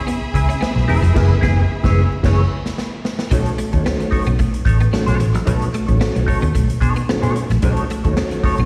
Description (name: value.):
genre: funk.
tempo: 111 BPM.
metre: 4/4.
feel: straight.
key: B mixolydian.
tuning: A4 = 435 Hz.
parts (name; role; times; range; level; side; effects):
clear studio string section; sustained chords; 0.0-3.3 s; G#4 to B5; -31 LUFS; equal; none.
clean electric guitar; riff; 0.0-8.7 s; F#3 to C#4; -29 LUFS; equal; ensemble chorus, slapback echo.
semi-hollow electric guitar; accompaniment; 0.1-8.6 s; D#4 to C#5; -28 LUFS; equal; wah, slapback echo.
swinging big-band drum kit; drums; 0.1-8.7 s; crash cymbal, hi-hat, kick drum, snare drum; -24 LUFS; equal; none.
vintage muted fingered electric bass; bass; 0.2-8.7 s; E1 to B2; -19 LUFS; equal; none.
tonewheel organ; stabs; 0.9-8.6 s; C#3 to C#4; -26 LUFS; equal; stopped rotary speaker, slapback echo.
room: light reverb, small room ambience.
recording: live gig heard through the venue's PA, recital hall reverb, vinyl crackle.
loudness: -17 LUFS.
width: mono.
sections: 0.0-3.3 A section; 3.3-8.7 B section.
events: band accent 1.2-3.3; drum fill 2.2-3.3.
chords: 0.0 F#9sus4; 3.3 B9.